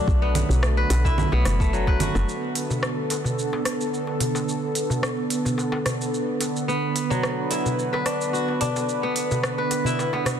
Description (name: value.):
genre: organic downtempo.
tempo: 109 BPM.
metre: 4/4.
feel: swing 53% on 16ths.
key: B minor.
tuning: A4 = 439 Hz.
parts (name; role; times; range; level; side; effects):
warm analog pad; sustained chords; 0.0-10.4 s; D3 to B4; -26 LUFS; right 2 dB; chorus, tremolo, sidechain pumping.
kora; arpeggios; 0.0-10.4 s; F#3 to B4; -27 LUFS; left 2 dB; tape echo.
woody FM bass; bass; 0.1-2.2 s; F#1 to B1; -22 LUFS; equal; sidechain pumping.
electronic kick drum; drums; 0.1-2.0 s; none; -23 LUFS; equal; studio reverb.
organic electronic drum kit; drums; 0.1-10.4 s; congas, hi-hat, rim click, shaker; -29 LUFS; right 2 dB; studio reverb, soft clipping on snare.
darbuka; percussion; 0.4-10.4 s; none; -30 LUFS; left 1 dB; none.
room: light reverb.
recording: dense, heavily limited modern master.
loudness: -21 LUFS.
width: side -8 dB against mid.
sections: 0.0-2.3 A section; 2.3-10.4 B section.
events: none.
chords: 0.0 Bm7.